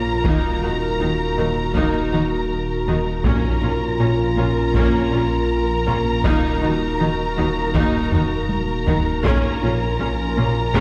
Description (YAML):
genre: cinematic, hybrid orchestral and electronic film score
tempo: 80 BPM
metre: 4/4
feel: straight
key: unclear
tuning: A4 = 440 Hz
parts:
  - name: warm symphonic violin section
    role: second line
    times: 0.0-10.8 s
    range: Bb4 to Bb5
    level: -28 LUFS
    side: equal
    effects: none
  - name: warbly tape-like pad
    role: sustained chords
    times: 0.0-10.8 s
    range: Bb3 to Bb4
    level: -26 LUFS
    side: equal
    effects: chorus, built-in reverb
  - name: dark detuned saw bass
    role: bass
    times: 0.0-10.8 s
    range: Eb1 to Bb1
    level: -28 LUFS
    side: equal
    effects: none
  - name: rich symphonic viola section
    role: accompaniment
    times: 0.2-10.8 s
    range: Bb3 to Gb4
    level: -28 LUFS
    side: equal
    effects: none
  - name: clear symphonic double bass section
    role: bass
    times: 0.2-10.8 s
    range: Bb1 to Eb2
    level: -29 LUFS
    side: equal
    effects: none
  - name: solo taiko drums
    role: drums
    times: 0.2-10.8 s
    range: none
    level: -26 LUFS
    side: equal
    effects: none
  - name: rich symphonic cello section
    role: bass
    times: 0.3-10.8 s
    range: Bb2 to Eb3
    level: -29 LUFS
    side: equal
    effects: none
room: wet scoring stage reverb, RT60 1.8 s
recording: heard from further back in the room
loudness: -20 LUFS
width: mono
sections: 0.0-10.8 A section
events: drum fill 8.1-9.2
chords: 0.2 Ebm; 3.2 Bbm; 6.2 Ebm; 9.2 Bbm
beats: | 0.24 0.99 1.75 2.50 | 3.25 4.00 4.75 5.50 | 6.25 7.00 7.75 8.49 | 9.24 9.99 10.74